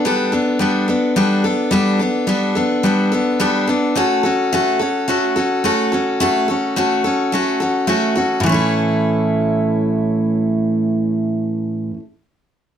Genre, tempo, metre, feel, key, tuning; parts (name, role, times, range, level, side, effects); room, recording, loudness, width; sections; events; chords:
rock; 107 BPM; 4/4; straight; A mixolydian; A4 = 441 Hz
picked steel-string acoustic guitar; solo; 0.0-12.0 s; A2 to A4; -15 LUFS; equal; slapback echo
moderate studio ambience, RT60 0.5 s; dark, warm production; -15 LUFS; side -9 dB against mid
0.0-8.4 A section; 8.4-10.7 B section
0.0 Gadd9; 4.0 F#m/A; 8.4 A